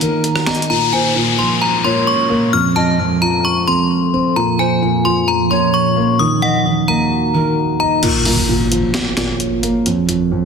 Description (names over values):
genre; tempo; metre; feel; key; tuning
hip hop, trap; 131 BPM; 4/4; half-time; Bb minor; A4 = 440 Hz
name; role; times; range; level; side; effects
metallic FM bell; melody; 0.0-8.0 s; Gb5 to F6; -18 LUFS; left 2 dB; chorus, phaser, ping-pong delay
breathy reedy large pan pipes; second line; 0.0-7.6 s; Bb4 to Eb5; -25 LUFS; left 3 dB; ping-pong delay
dark concert grand piano; accompaniment; 0.0-10.4 s; F2 to Eb5; -17 LUFS; right 1 dB; none
deep dark ambient pad; sustained chords; 0.0-10.4 s; Eb2 to Db5; -21 LUFS; right 2 dB; chorus, built-in reverb
breakbeat sampler-style drum kit; drums; 0.0-0.7, 8.0-10.2 s; crash cymbal, finger snaps, hi-hat, rim click, snare drum; -19 LUFS; left 1 dB; none
downlifter and impact; sound effects; 0.7-4.4, 8.0-9.9 s; none; -22 LUFS; left 1 dB; none
room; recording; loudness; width
moderate lush hall reverb, RT60 1.7 s; dense, heavily limited modern master; -13 LUFS; side -6 dB against mid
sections
0.7-8.0 A section; 8.0-10.4 B section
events
break 0.0-0.7; kick muted 8.0-10.4; impact 8.0-9.9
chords
0.0 Ebm; 0.7 Bbm7; 2.5 F; 4.4 Bbm7; 6.2 Ebm; 8.0 Bbm7; 9.9 F